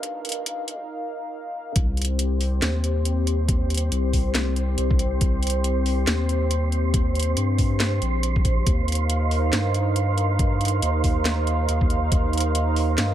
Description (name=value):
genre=deep dubstep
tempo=139 BPM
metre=4/4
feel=swing 59% on 16ths, half-time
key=C minor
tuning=A4 = 441 Hz
part: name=dark analog pad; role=sustained chords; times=0.0-13.1 s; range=C4 to F5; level=-28 LUFS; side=left 1 dB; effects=chorus
part: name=saturated sub bass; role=bass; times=0.0-13.1 s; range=Bb1 to G2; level=-23 LUFS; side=equal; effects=high-pass filter
part: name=electronic kick drum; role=drums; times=0.0-12.2 s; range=none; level=-22 LUFS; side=equal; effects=high-pass filter on kick, high-pass filter on room
part: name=garage drum kit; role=drums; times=0.0-13.1 s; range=hi-hat, snare drum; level=-27 LUFS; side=equal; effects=none
part: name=wind-like tuned noise texture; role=texture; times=2.4-13.1 s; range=C5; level=-31 LUFS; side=right 7 dB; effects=built-in reverb
room=little or no reverb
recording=high-pass filter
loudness=-20 LUFS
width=side -11 dB against mid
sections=0.0-1.8 A section; 1.8-13.1 B section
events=build-up 0.0-1.8; filter sweep 0.0-1.8; break 0.9-1.8; drop 1.8-13.1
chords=0.0 Eb; 1.8 Cm; 8.7 Eb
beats=| 0.03 0.46 0.90 1.33 | 1.76 2.19 2.62 3.05 | 3.48 3.92 4.35 4.78 | 5.21 5.64 6.08 6.51 | 6.94 7.37 7.80 8.23 | 8.66 9.10 9.53 9.96 | 10.39 10.82 11.26 11.69 | 12.12 12.55 12.98